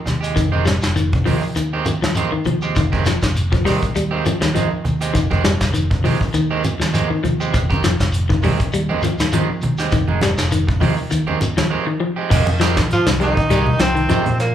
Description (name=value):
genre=afrobeat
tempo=100 BPM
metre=4/4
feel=swing 55% on 16ths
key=F minor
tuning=A4 = 440 Hz
part: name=electric guitar at the edge of break-up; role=stabs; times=0.1-14.4 s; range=Eb3 to G4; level=-24 LUFS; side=right 6 dB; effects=none
part: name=fingered electric bass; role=bass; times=0.1-14.5 s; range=F1 to F3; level=-22 LUFS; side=right 1 dB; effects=none
part: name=soft brush drum kit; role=drums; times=0.1-14.5 s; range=crash cymbal, hi-hat, kick drum, snare drum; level=-21 LUFS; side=equal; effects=none
part: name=congas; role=percussion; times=0.1-14.4 s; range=none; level=-25 LUFS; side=equal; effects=none
part: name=shekere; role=percussion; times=0.1-14.5 s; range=none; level=-27 LUFS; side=left 1 dB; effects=none
part: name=semi-hollow electric guitar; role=arpeggios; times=0.4-14.3 s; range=Eb3 to G3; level=-23 LUFS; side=left 4 dB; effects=none
part: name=bright tenor saxophone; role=melody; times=12.9-14.5 s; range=Bb3 to F4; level=-20 LUFS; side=right 1 dB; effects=none
part: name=clear trombone section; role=second line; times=12.9-14.5 s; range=Bb2 to F3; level=-26 LUFS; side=right 1 dB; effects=none
room=moderate large studio reverb, RT60 1.2 s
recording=band playing live in one room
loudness=-15 LUFS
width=side -10 dB against mid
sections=0.0-12.3 A section; 12.3-14.5 B section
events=break 11.7-12.3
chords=0.0 Fm9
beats=| 0.37 0.96 1.56 2.16 | 2.76 3.35 3.95 4.55 | 5.15 5.74 6.34 6.94 | 7.54 8.13 8.73 9.33 | 9.92 10.52 11.12 11.71 | 12.31 12.91 13.50 14.10